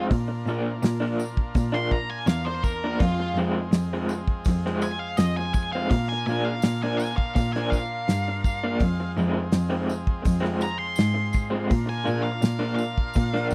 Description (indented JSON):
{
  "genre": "psychedelic rock",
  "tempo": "83 BPM",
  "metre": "4/4",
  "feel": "straight",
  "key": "unclear",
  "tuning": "A4 = 440 Hz",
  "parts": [
    { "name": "octave-fuzz lead guitar", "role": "melody", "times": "0.0-13.5 s", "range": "F4 to C6", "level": "-33 LUFS", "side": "equal", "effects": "distortion, slapback echo" },
    { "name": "overdriven combo organ", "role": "sustained chords", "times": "0.0-13.5 s", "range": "Ab3 to Bb4", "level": "-40 LUFS", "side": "equal", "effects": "none" },
    { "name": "electric guitar through a small old amp", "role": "riff", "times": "0.0-13.5 s", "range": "Bb2 to D4", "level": "-30 LUFS", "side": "equal", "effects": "tremolo" },
    { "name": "rich cello", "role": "bass", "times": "0.0-13.5 s", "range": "E2 to Bb2", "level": "-30 LUFS", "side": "equal", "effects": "none" },
    { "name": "cloth-damped thuddy drum kit", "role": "drums", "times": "0.1-13.4 s", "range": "hi-hat, kick drum, snare drum", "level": "-26 LUFS", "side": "equal", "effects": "none" },
    { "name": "tambourine", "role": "percussion", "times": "0.1-13.5 s", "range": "none", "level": "-49 LUFS", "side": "equal", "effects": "none" }
  ],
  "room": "small room ambience",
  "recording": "dry, close 1970s-style studio recording",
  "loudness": "-25 LUFS",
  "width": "mono",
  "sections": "0.0-13.5 A section",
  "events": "lead electric guitar solo 0.0-13.5",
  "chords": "0.1 Bb; 3.0 Fm; 5.9 Bb; 8.8 Fm; 11.7 Bb"
}